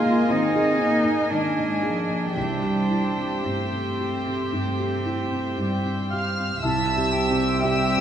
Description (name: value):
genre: cinematic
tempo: 54-62 BPM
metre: 4/4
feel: rubato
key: C major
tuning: A4 = 440 Hz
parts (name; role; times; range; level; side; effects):
- warm cello; melody; 0.0-6.1 s; C4 to F4; -27 LUFS; right 2 dB; none
- warm studio violin section; second line; 0.0-8.0 s; Eb5 to Ab5; -31 LUFS; left 1 dB; none
- felt-muted upright piano; accompaniment; 0.0-8.0 s; C2 to Ab4; -27 LUFS; left 1 dB; none
- warm studio viola section; accompaniment; 0.0-8.0 s; C4 to C5; -32 LUFS; right 2 dB; none
- concert harp; arpeggios; 0.0-8.0 s; Ab2 to C5; -39 LUFS; equal; none
- warm studio cello section; bass; 0.0-8.0 s; C2 to C4; -28 LUFS; right 1 dB; none
- warm studio violin section; melody; 6.1-8.0 s; E6 to F6; -28 LUFS; left 3 dB; none
- warm oboe; second line; 6.1-8.0 s; E5 to F5; -29 LUFS; right 2 dB; none
- silver concert flute; second line; 6.6-8.0 s; G5 to A5; -27 LUFS; right 2 dB; none
- dark French horn section; sustained chords; 6.6-8.0 s; G3 to C4; -30 LUFS; left 1 dB; none
- warm studio double bass section; bass; 6.6-8.0 s; C2; -31 LUFS; right 4 dB; none
room: wet scoring stage reverb, RT60 1.7 s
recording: studio ambience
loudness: -21 LUFS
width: side -9 dB against mid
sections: 0.0-6.6 A section; 6.6-8.0 A section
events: none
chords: 0.0 Absus2; 2.4 C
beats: 0.30 1.30 | 2.36 3.45 4.53 5.58 | 6.63 7.63